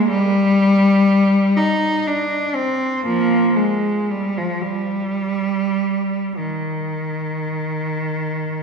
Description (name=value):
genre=classical, free, expressive piece for unaccompanied cello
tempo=29-41 BPM (dotted quarters)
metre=6/8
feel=rubato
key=unclear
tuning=A4 = 440 Hz
part: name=rich cello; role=solo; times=0.0-8.6 s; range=Eb3 to Eb4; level=-17 LUFS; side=equal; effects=none
room=wet concert hall reverb, RT60 2.2 s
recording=recorded in a church or concert hall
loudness=-17 LUFS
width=side -6 dB against mid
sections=0.0-8.6 A section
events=none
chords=none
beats=| 0.08 1.56 | 3.05 4.62 | 6.35 8.19